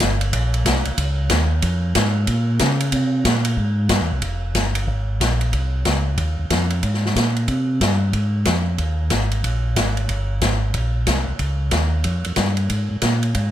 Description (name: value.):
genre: soul jazz organ trio.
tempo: 184 BPM.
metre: 4/4.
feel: swing 63% on 8ths.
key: F minor.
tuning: A4 = 440 Hz.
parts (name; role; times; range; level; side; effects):
mellow tonewheel organ; bass; 0.0-13.5 s; F1 to Db3; -20 LUFS; equal; chorus vibrato, slow rotary speaker.
swinging big-band drum kit; drums; 0.0-13.4 s; hi-hat, kick drum, ride cymbal, snare drum; -22 LUFS; left 1 dB; none.
room: light reverb.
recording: none.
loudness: -18 LUFS.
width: side -12 dB against mid.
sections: 0.0-4.2 A section; 4.2-13.5 B section.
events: none.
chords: none.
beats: 0.01 | 0.33 0.66 0.98 1.31 | 1.63 1.96 2.28 2.61 | 2.93 3.25 3.58 3.91 | 4.23 4.56 4.88 5.21 | 5.53 5.86 6.18 6.51 | 6.84 7.16 7.49 7.82 | 8.14 8.47 8.79 9.12 | 9.45 9.77 10.10 10.42 | 10.75 11.07 11.40 11.73 | 12.05 12.38 12.71 13.03 | 13.36.